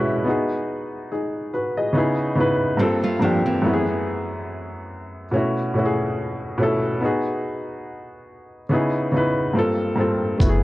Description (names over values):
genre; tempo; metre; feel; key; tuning
lo-fi hip hop; 71 BPM; 4/4; swing 57% on 16ths; unclear; A4 = 440 Hz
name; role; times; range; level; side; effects
nylon-string guitar; second line; 0.0-3.9 s; E3 to A4; -27 LUFS; right 2 dB; analog delay
dark upright piano; accompaniment; 0.0-10.6 s; F#2 to D#5; -20 LUFS; equal; cassette tape
sub bass with octave; bass; 10.4-10.6 s; F#1; -18 LUFS; equal; none
boom bap sampler-style drum kit; drums; 10.4-10.6 s; hi-hat, kick drum; -18 LUFS; equal; none
room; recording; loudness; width
moderate plate reverb, RT60 2.7 s; worn, warbling old tape, cassette tape, warbly pitch drift; -20 LUFS; side -17 dB against mid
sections
0.0-10.6 A section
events
none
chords
0.3 B6; 1.9 C#m9; 2.8 Gm11; 3.6 F#m11; 5.3 B9sus4; 7.0 B6; 8.7 C#m9; 9.6 Gm11